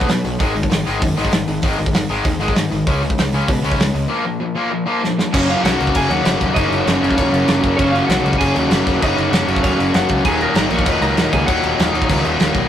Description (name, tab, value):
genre	punk rock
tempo	195 BPM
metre	4/4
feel	straight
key	unclear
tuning	A4 = 440 Hz
part	distorted electric guitar	riff	0.0-12.7 s	Eb2 to Gb4	-24 LUFS	right 4 dB	overdrive
part	sludgy distorted guitar	riff	0.0-12.7 s	Eb2 to Gb4	-20 LUFS	left 4 dB	overdrive
part	fuzz picked electric bass	bass	0.0-12.7 s	Eb1 to B2	-22 LUFS	equal	overdrive
part	loose indie drum kit	drums	0.0-12.6 s	crash cymbal, hi-hat, kick drum, snare drum	-19 LUFS	equal	none
part	lightly driven lead guitar	melody	5.3-11.9 s	Db4 to Db6	-20 LUFS	equal	none
part	fuzz guitar	riff	5.3-12.7 s	Eb2 to Gb3	-24 LUFS	equal	none
room	light reverb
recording	rough rehearsal-room recording, warm saturation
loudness	-14 LUFS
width	side -10 dB against mid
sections	0.0-5.3 A section; 5.3-12.7 B section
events	break 4.1-5.3; drum fill 5.0-5.3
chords	0.4 Ab5; 2.9 Db5; 4.1 Bb5; 5.3 Gb; 10.2 Ebm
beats	0.08 | 0.39 0.70 1.01 1.32 | 1.63 1.94 2.24 2.55 | 2.86 3.17 3.48 3.79 | 4.10 4.41 4.71 5.02 | 5.33 5.64 5.94 6.25 | 6.56 6.87 7.17 7.48 | 7.79 8.10 8.40 8.71 | 9.02 9.32 9.63 9.94 | 10.24 10.55 10.86 11.16 | 11.47 11.78 12.09 12.39